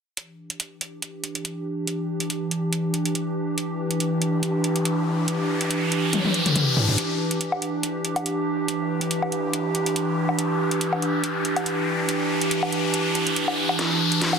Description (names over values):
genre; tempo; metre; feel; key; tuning
heavy wobble dubstep; 141 BPM; 4/4; swing 54% on 16ths, half-time; E minor; A4 = 441 Hz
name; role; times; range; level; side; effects
evolving wavetable pad; sustained chords; 1.1-14.4 s; E3 to G4; -24 LUFS; right 1 dB; chorus, built-in reverb
dubstep drum kit; drums; 0.2-14.4 s; hi-hat, snare drum, toms, woodblock; -26 LUFS; left 1 dB; high-pass filter on hats, high-pass filter on toms, high-pass filter on perc, high-pass filter on snare, high-pass filter on room
riser; sound effects; 4.4-14.4 s; none; -27 LUFS; left 1 dB; none
room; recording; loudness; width
moderate digital room reverb, RT60 1.1 s; dense, heavily limited modern master; -22 LUFS; side -6 dB against mid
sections
0.2-7.0 A section; 7.0-14.4 B section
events
filter sweep on ambient pad 0.2-7.0; riser 4.4-7.0, 7.0-14.4; drum fill 6.1-7.0, 13.8-14.4; build-up 7.0-14.4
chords
0.2 Em7; 13.8 Dadd9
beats
| 0.17 0.60 1.02 1.45 | 1.87 2.30 2.73 3.15 | 3.58 4.00 4.43 4.85 | 5.28 5.70 6.13 6.55 | 6.98 7.41 7.83 8.26 | 8.68 9.11 9.53 9.96 | 10.38 10.81 11.24 11.66 | 12.09 12.51 12.94 13.36 | 13.79 14.21